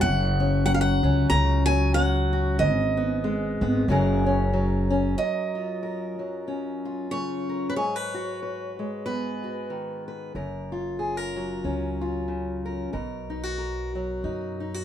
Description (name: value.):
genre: acoustic folk duo or small band.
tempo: 93 BPM.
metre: 4/4.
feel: swing 57% on 8ths.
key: F# major.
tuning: A4 = 442 Hz.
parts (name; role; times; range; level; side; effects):
picked steel-string acoustic guitar; melody; 0.0-10.0 s; B4 to A#5; -28 LUFS; right 2 dB; none.
fingerpicked steel-string acoustic guitar; accompaniment; 0.0-14.8 s; F#2 to B4; -27 LUFS; left 1 dB; none.
upright bass; bass; 0.0-5.1, 10.3-14.8 s; F#1 to F#2; -26 LUFS; equal; none.
room: light reverb.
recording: dark, warm production.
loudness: -23 LUFS.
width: side -10 dB against mid.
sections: 0.0-5.2 A section; 5.2-14.8 B section.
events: none.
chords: 0.0 F#5; 2.6 G#m; 3.9 F#add9; 5.2 F#maj7; 7.8 G#m7; 10.4 F#maj7; 12.9 Bmaj7.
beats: | 0.02 0.67 1.31 1.95 | 2.59 3.24 3.88 4.53 | 5.17 5.82 6.47 7.11 | 7.76 8.41 9.06 9.70 | 10.35 11.00 11.65 12.29 | 12.94 13.59 14.24.